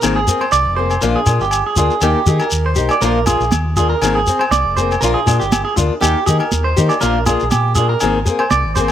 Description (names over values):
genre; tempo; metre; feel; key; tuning
highlife guitar band; 120 BPM; 4/4; swing 54% on 16ths; Bb mixolydian; A4 = 440 Hz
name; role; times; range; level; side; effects
picked acoustic archtop guitar; accompaniment; 0.0-8.9 s; Eb3 to Ab4; -19 LUFS; left 6 dB; none
clean electric guitar; arpeggios; 0.0-8.9 s; G4 to D5; -18 LUFS; right 4 dB; none
hollow-body short-scale fingered electric bass; bass; 0.0-8.9 s; F1 to Eb3; -19 LUFS; equal; none
agogo bells; percussion; 0.0-8.9 s; none; -24 LUFS; left 2 dB; none
shekere; percussion; 0.0-8.9 s; none; -20 LUFS; left 1 dB; none
congas; percussion; 3.0-8.8 s; none; -22 LUFS; right 4 dB; none
room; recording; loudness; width
light reverb, small room reverb; none; -13 LUFS; side -10 dB against mid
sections
0.0-8.9 A section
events
none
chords
0.0 Abadd9; 1.0 Bb; 2.0 Eb; 3.0 Bb; 4.0 Abadd9; 5.0 Bb; 6.0 Eb; 7.0 Bb; 8.0 Abadd9